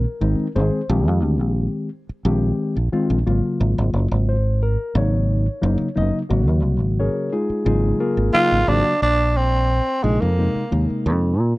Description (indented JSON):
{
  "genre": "jazz",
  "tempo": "89 BPM",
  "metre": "4/4",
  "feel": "straight",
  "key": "unclear",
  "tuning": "A4 = 443 Hz",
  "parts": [
    { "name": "mellow reed electric piano", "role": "accompaniment", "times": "0.0-11.3 s", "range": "C3 to Eb5", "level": "-22 LUFS", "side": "left 2 dB", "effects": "none" },
    { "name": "fingered electric bass", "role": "bass", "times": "0.0-11.5 s", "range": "Gb1 to Bb2", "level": "-19 LUFS", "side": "equal", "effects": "none" },
    { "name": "growling tenor saxophone", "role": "melody", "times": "8.3-10.9 s", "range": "Ab3 to F4", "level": "-19 LUFS", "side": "right 1 dB", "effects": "none" }
  ],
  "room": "small room ambience",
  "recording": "dry, close 1970s-style studio recording",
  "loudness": "-17 LUFS",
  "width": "side -20 dB against mid",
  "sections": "0.0-9.0 A section; 9.0-11.6 B section",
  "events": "none",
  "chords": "0.0 Bb13sus4; 3.3 Ab13sus4; 9.0 Bb9sus4"
}